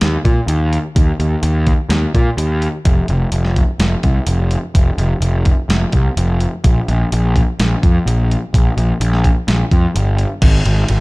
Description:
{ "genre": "rock, shoegaze and dream pop", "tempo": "127 BPM", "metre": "4/4", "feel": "straight", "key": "unclear", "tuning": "A4 = 439 Hz", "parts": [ { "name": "fuzz picked electric bass", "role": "bass", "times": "0.0-11.0 s", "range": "F1 to Bb2", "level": "-14 LUFS", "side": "equal", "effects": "overdrive" }, { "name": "crisp 8-bit digital drum machine", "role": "drums", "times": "0.0-11.0 s", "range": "crash cymbal, hi-hat, kick drum, ride cymbal, snare drum", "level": "-15 LUFS", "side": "equal", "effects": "none" } ], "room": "little or no reverb", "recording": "dark, warm production", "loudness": "-13 LUFS", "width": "side -25 dB against mid", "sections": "0.0-10.4 A section", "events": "none", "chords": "none" }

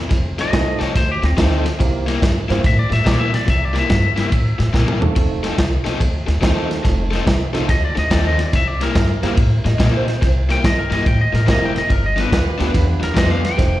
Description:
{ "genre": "electric blues shuffle", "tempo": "142 BPM", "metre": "4/4", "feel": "swing 66% on 8ths", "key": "unclear", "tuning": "A4 = 440 Hz", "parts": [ { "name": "overdriven electric guitar", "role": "riff", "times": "0.1-13.6 s", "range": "G2 to A4", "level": "-24 LUFS", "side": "left 5 dB", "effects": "slapback echo" }, { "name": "upright bass", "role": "bass", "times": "0.1-13.8 s", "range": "F1 to Bb2", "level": "-19 LUFS", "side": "equal", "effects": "none" }, { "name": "crunchy breakbeat drum kit", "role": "drums", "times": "0.1-13.7 s", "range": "kick drum, ride cymbal, snare drum, toms", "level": "-19 LUFS", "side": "equal", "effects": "none" }, { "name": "lightly driven lead guitar", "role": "melody", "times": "0.4-5.0, 7.7-13.8 s", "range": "C4 to G5", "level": "-22 LUFS", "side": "left 2 dB", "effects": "slapback echo" }, { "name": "dark baby grand piano", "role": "accompaniment", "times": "0.5-13.8 s", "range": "A3 to C5", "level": "-24 LUFS", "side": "right 6 dB", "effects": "slapback echo" }, { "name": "electric guitar through a small old amp", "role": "second line", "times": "9.7-10.3 s", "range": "C5 to Eb5", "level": "-26 LUFS", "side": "right 3 dB", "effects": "analog chorus, slapback echo" }, { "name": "warm saxophone section", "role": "stabs", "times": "12.3-13.6 s", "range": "F4 to B4", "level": "-26 LUFS", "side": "right 2 dB", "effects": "slapback echo, digital delay" } ], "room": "small room ambience", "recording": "live gig heard through the venue's PA, recital hall reverb", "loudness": "-15 LUFS", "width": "side -15 dB against mid", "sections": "0.0-13.8 A section", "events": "drum fill 4.7-5.2", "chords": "0.1 F7; 1.8 C7; 5.2 F7; 8.5 C7; 11.9 G7" }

